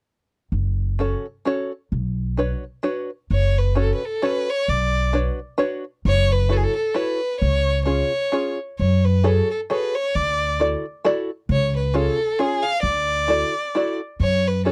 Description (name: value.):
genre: musette waltz.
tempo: 132 BPM.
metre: 3/4.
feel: swing 55% on 8ths.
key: F# minor.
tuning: A4 = 441 Hz.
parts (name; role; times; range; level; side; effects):
upright bass; bass; 0.5-14.7 s; F#1 to F#2; -23 LUFS; equal; none.
open-back banjo; accompaniment; 1.0-14.7 s; C#4 to D5; -25 LUFS; equal; none.
rich violin; melody; 3.3-14.7 s; G#4 to E#5; -25 LUFS; equal; none.
room: little or no reverb.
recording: dry, close 1970s-style studio recording.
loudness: -22 LUFS.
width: mono.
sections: 0.5-3.3 A section; 3.3-14.7 B section.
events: none.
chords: 0.5 F#m; 1.9 Bmadd9; 3.3 F#m; 4.7 Bmadd9; 6.0 F#m7; 7.4 C#; 8.8 F#madd9; 10.2 Dadd9; 11.5 C#; 12.8 Dadd9; 14.2 F#5.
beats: | 0.54 1.00 1.46 | 1.92 2.38 2.84 | 3.31 3.77 4.23 | 4.68 5.14 5.59 | 6.05 6.50 6.95 | 7.41 7.87 8.33 | 8.79 9.25 9.70 | 10.15 10.60 11.05 | 11.50 11.95 12.39 | 12.84 13.29 13.74 | 14.20 14.65.